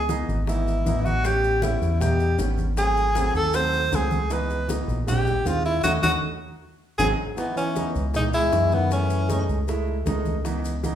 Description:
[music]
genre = Afro-Cuban jazz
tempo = 156 BPM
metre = 4/4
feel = straight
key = C# minor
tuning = A4 = 441 Hz
[part]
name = breathy tenor saxophone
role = melody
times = 0.0-9.5 s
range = B3 to B#4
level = -24 LUFS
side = equal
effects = none
[part]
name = fingered electric bass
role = bass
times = 0.0-11.0 s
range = G#1 to F#2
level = -25 LUFS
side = equal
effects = none
[part]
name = warm grand piano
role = accompaniment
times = 0.1-11.0 s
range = E3 to E#4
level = -30 LUFS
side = right 3 dB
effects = none
[part]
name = bongos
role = percussion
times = 0.1-11.0 s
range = none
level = -36 LUFS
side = left 3 dB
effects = none
[part]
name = congas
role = percussion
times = 0.1-11.0 s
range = none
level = -32 LUFS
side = equal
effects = none
[part]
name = maracas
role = percussion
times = 0.1-11.0 s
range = none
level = -41 LUFS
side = left 5 dB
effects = none
[part]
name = mellow trombone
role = second line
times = 7.4-9.5 s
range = D#3 to G#3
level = -30 LUFS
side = right 1 dB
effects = none
[sound]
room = wet large studio reverb, RT60 1.2 s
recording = band playing live in one room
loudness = -21 LUFS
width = side -10 dB against mid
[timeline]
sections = 0.0-7.4 A section; 7.4-11.0 B section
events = tenor saxophone solo 0.0-7.4; band accent 5.8-7.4; drum fill 6.6-7.4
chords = 0.0 C#m7; 1.2 A7; 2.8 G#7b9; 4.3 C#m7; 5.1 A#7; 5.8 D#m7b5; 6.6 G#7; 7.4 C#m7; 8.9 F#m7

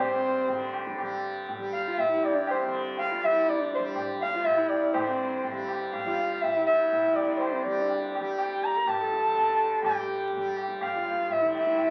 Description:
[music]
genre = indian classical, Hindustani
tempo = 122 BPM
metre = 5/4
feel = straight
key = G raga bhimpalasi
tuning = A4 = 439 Hz
[part]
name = dark sarangi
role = melody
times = 0.0-11.9 s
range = C5 to Bb5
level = -29 LUFS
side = equal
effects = none
[part]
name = dark sarangi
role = second line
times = 0.0-11.9 s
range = C4 to Bb4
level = -35 LUFS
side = equal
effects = none
[part]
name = tanpura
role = drone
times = 0.0-11.9 s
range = G2 to G3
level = -37 LUFS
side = equal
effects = none
[part]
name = tabla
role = percussion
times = 0.5-11.9 s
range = none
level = -37 LUFS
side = equal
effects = none
[sound]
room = moderate small room reverb, RT60 0.5 s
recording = very old 78 rpm record, vinyl crackle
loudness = -27 LUFS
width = mono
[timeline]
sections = 0.0-5.0 A section; 5.0-11.9 B section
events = none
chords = none

